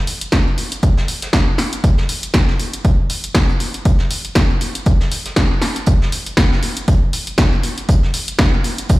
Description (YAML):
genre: house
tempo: 119 BPM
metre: 4/4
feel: swing 56% on 16ths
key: none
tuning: none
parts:
  - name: punchy analog drum machine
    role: drums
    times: 0.1-9.0 s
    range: hi-hat, snare drum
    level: -20 LUFS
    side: equal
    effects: none
  - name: vintage brush drum kit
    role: drums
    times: 0.1-9.0 s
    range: hi-hat, snare drum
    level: -29 LUFS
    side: right 1 dB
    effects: high-pass filter on hats, high-pass filter on snare, high-pass filter on room
  - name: electronic kick drum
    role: drums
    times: 0.3-9.0 s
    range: none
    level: -15 LUFS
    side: equal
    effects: none
room: light reverb, small room ambience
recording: played on a big sound system in a bare room, large studio reverb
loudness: -14 LUFS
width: side -19 dB against mid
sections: 0.0-9.0 A section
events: build-up 0.0-9.0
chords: none